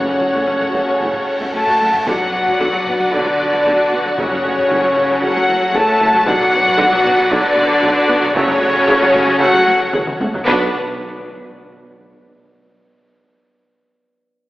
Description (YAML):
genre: cinematic, epic orchestral film score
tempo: 114 BPM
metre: 4/4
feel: straight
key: B minor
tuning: A4 = 440 Hz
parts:
  - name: warm symphonic violin section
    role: melody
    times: 0.0-10.8 s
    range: B4 to A5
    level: -21 LUFS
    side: left 1 dB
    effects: none
  - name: concert flute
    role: second line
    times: 0.0-10.7 s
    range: C#5 to B5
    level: -20 LUFS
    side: equal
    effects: none
  - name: warm symphonic violin section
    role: second line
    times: 0.0-10.8 s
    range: D4 to F#5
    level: -24 LUFS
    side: left 1 dB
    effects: none
  - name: bright trombone section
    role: sustained chords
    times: 0.0-10.7 s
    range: C#3 to D4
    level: -27 LUFS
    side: right 1 dB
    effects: none
  - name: dark French horn section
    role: sustained chords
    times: 0.0-10.7 s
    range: C#4 to B4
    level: -19 LUFS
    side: left 1 dB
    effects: none
  - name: rich symphonic string section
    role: sustained chords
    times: 0.0-10.8 s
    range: C#4 to F#5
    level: -23 LUFS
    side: equal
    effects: none
  - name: timpani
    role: percussion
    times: 0.0-0.7, 4.2-10.7 s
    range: F#2 to B2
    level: -35 LUFS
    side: equal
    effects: none
  - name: cymbal swell, sub drop and impact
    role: sound effects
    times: 1.1-4.2, 10.5-12.6 s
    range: none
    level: -33 LUFS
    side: equal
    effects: none
  - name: rich symphonic viola section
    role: accompaniment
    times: 0.1-10.8 s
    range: C#3 to F#4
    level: -22 LUFS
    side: equal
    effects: none
  - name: rich symphonic cello section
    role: bass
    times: 0.1-10.8 s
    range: F#2 to B3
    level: -24 LUFS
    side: equal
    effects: none
  - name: mellow tuba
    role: bass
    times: 0.2-10.7 s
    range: F#1 to B1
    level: -27 LUFS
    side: right 1 dB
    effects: none
  - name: rich symphonic double bass section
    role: bass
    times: 0.2-10.8 s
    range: F#1 to B1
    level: -34 LUFS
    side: right 1 dB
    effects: none
  - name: taiko ensemble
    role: drums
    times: 0.3-11.5 s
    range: none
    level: -29 LUFS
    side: equal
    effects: none
room: moderate concert hall reverb, RT60 2.3 s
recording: AM radio sound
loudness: -13 LUFS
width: side -17 dB against mid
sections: 0.0-2.1 A section; 2.1-10.5 B section; 10.5-12.6 C section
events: cymbal swell 1.1-2.1; impact 2.1-4.2, 10.5-12.6; drum fill 9.9-10.5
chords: 0.0 F#m; 2.1 Bm; 4.2 F#m; 6.3 Bm; 8.4 F#m; 10.5 Bm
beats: 0.47 1.00 1.54 | 2.07 2.60 3.13 3.65 | 4.18 4.70 5.22 5.74 | 6.26 6.79 7.31 7.83 | 8.35 8.88 9.40 9.93 | 10.46 10.99 11.52 12.04